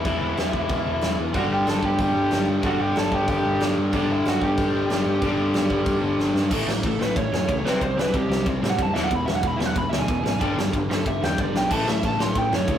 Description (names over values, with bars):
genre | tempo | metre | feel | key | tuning
punk rock | 185 BPM | 4/4 | straight | unclear | A4 = 440 Hz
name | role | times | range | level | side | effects
lead guitar through a small cranked amp | melody | 0.0-12.8 s | D4 to C6 | -26 LUFS | right 1 dB | overdrive
distorted electric guitar | riff | 0.0-12.8 s | E2 to C4 | -33 LUFS | right 4 dB | overdrive
raw garage guitar | riff | 0.0-12.8 s | E2 to C4 | -26 LUFS | left 2 dB | overdrive
hollow-body short-scale picked electric bass | bass | 0.1-12.8 s | E1 to A2 | -30 LUFS | equal | none
big rock drum kit | drums | 0.1-12.8 s | crash cymbal, kick drum, ride cymbal, snare drum | -26 LUFS | equal | none
biting overdriven guitar | riff | 1.3-12.8 s | E2 to C4 | -32 LUFS | right 2 dB | none
room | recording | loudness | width
light reverb | rough rehearsal-room recording, warm saturation | -20 LUFS | side -10 dB against mid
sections
0.0-6.5 A section; 6.5-12.8 B section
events
half time 0.0-6.5; drum fill 6.2-6.5; lead electric guitar solo 6.5-12.8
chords
0.0 E5; 1.3 G5; 6.5 A; 7.7 C5; 9.0 E; 10.4 G5; 11.7 A